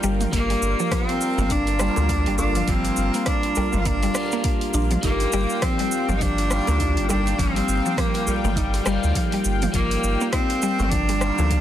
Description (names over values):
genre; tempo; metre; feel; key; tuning
organic downtempo; 102 BPM; 4/4; swing 58% on 16ths; unclear; A4 = 440 Hz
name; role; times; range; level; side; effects
bright cello; melody; 0.0-11.6 s; G3 to F4; -25 LUFS; right 1 dB; digital delay
electric guitar at the edge of break-up; accompaniment; 0.0-11.6 s; Eb3 to F4; -30 LUFS; left 1 dB; phaser, sidechain pumping, ping-pong delay
warm analog pad; sustained chords; 0.0-11.6 s; F4 to G5; -31 LUFS; left 1 dB; chorus, sidechain pumping
mallet-like synth pluck; arpeggios; 0.0-11.6 s; F3 to Eb4; -28 LUFS; equal; chorus, ping-pong delay
round analog bass; bass; 0.0-11.6 s; G1 to D2; -24 LUFS; equal; none
deep house drum kit; drums; 0.0-11.6 s; hi-hat, rim click, shaker, toms; -30 LUFS; right 1 dB; overdrive
electronic kick drum; drums; 0.3-11.6 s; none; -26 LUFS; equal; none
djembe; percussion; 1.1-11.5 s; none; -33 LUFS; left 1 dB; none
bronze singing bowl; texture; 5.0-11.6 s; G4; -37 LUFS; left 12 dB; none
room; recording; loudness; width
light reverb, digital ambience; dense, heavily limited modern master; -19 LUFS; side -11 dB against mid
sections
0.0-11.6 A section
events
none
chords
0.0 Gm7; 5.0 Ebadd9/G